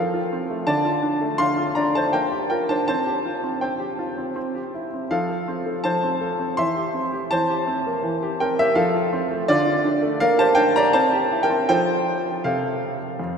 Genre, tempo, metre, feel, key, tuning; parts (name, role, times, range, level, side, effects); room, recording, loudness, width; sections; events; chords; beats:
classical-period piano sonatina; 82 BPM; 3/4; straight; F major; A4 = 441 Hz
clear baby grand piano; solo; 0.0-13.4 s; F2 to C6; -19 LUFS; equal
wet cathedral reverb, RT60 4.6 s; minimal, uncompressed stereo recording; -19 LUFS; side -6 dB against mid
0.0-13.4 A section
0.0 F; 0.7 Dm; 2.1 Gm7/Bb; 2.9 Csus4; 4.4 C; 5.1 F; 6.6 C/E; 7.3 C7/E; 8.8 F; 9.5 Dm; 10.2 Gm/Bb; 10.9 C; 11.7 F
| 0.68 1.40 2.13 | 2.88 3.62 4.36 | 5.11 5.85 6.58 | 7.31 8.03 8.76 | 9.48 10.19 10.92 | 11.68 12.43 13.19